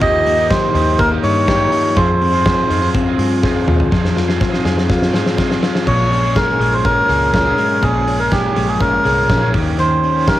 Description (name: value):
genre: jangly indie pop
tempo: 123 BPM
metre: 4/4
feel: straight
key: unclear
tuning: A4 = 445 Hz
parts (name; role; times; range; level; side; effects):
- melodica; melody; 0.0-2.9, 5.9-10.4 s; G4 to Eb5; -16 LUFS; right 1 dB; cassette tape
- crunchy overdriven guitar; accompaniment; 0.0-10.4 s; Bb2 to Ab4; -23 LUFS; right 7 dB; cassette tape
- direct-recorded clean electric guitar; arpeggios; 0.0-10.4 s; Bb2 to Ab4; -19 LUFS; left 4 dB; cassette tape
- vintage muted picked electric bass; bass; 0.0-10.3 s; Bb1 to Ab2; -20 LUFS; equal; none
- big rock drum kit; drums; 0.0-10.4 s; crash cymbal, hi-hat, kick drum, snare drum, toms; -19 LUFS; equal; none
room: light reverb, small room ambience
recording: home recording on cassette, vinyl crackle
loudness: -13 LUFS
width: side -14 dB against mid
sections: 0.0-3.9 A section; 3.9-5.9 B section; 5.9-10.4 C section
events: drum fill 3.4-3.9, 3.9-5.9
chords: 0.0 Ebadd9; 2.0 Fm; 5.9 Bbm7; 9.5 Eb7